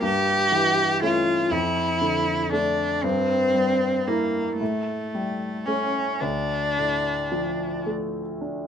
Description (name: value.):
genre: classical, romantic duo for cello and grand piano.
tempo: 36-41 BPM (dotted quarters).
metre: 6/8.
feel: rubato.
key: D minor.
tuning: A4 = 436 Hz.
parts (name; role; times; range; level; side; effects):
rich cello; melody; 0.0-7.9 s; A3 to G4; -23 LUFS; equal; none.
warm concert grand piano; accompaniment; 0.0-8.7 s; D2 to E4; -26 LUFS; equal; none.
room: light reverb.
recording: minimal, uncompressed stereo recording.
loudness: -21 LUFS.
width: side -8 dB against mid.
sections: 0.0-8.7 A section.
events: none.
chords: 0.0 A7/G; 1.5 Dm/F; 3.0 Edim/G; 4.6 A7; 6.2 Dm.